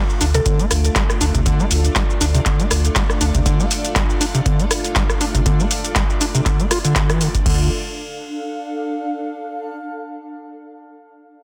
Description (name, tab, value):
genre	acid house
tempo	120 BPM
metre	4/4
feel	swing 55% on 16ths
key	D minor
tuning	A4 = 443 Hz
part	string machine, full ensemble	sustained chords	0.0-7.7 s	A3 to D5	-30 LUFS	equal	ensemble chorus, sidechain pumping
part	overdriven acid bass	riff	0.0-7.7 s	C3 to F4	-24 LUFS	equal	tube saturation, sidechain pumping, dub echo
part	granular cloud pad	texture	1.7-9.4 s	D4 to F5	-32 LUFS	equal	built-in reverb, sidechain pumping
part	electro analog drum machine	drums	0.1-7.6 s	crash cymbal, handclaps, hi-hat, rim click, shaker	-24 LUFS	equal	none
part	round analog bass	bass	0.2-3.4, 7.5-7.7 s	D2	-20 LUFS	equal	sidechain pumping
part	mallet-like synth pluck	melody	0.3-0.7 s	A4	-28 LUFS	equal	chorus, digital delay
part	electronic kick drum	drums	0.5-7.6 s	none	-22 LUFS	equal	overdrive
room	light reverb, digital ambience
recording	dense, heavily limited modern master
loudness	-18 LUFS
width	mono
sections	0.0-7.5 A section; 7.5-9.5 B section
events	filter sweep on acid bass 0.0-7.5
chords	0.0 Dm